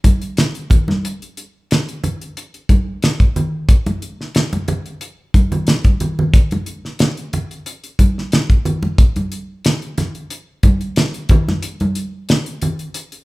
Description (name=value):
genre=jazz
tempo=91 BPM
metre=4/4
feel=straight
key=none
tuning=none
part: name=damped 70s drum kit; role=drums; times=0.0-13.2 s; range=hi-hat, kick drum, snare drum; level=-14 LUFS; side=equal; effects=none
part: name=congas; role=percussion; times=0.0-12.8 s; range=none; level=-20 LUFS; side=right 1 dB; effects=none
room=moderate large studio reverb, RT60 0.9 s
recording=band playing live in one room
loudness=-15 LUFS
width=side -21 dB against mid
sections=0.0-13.2 A section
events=drum fill 5.8-6.3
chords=none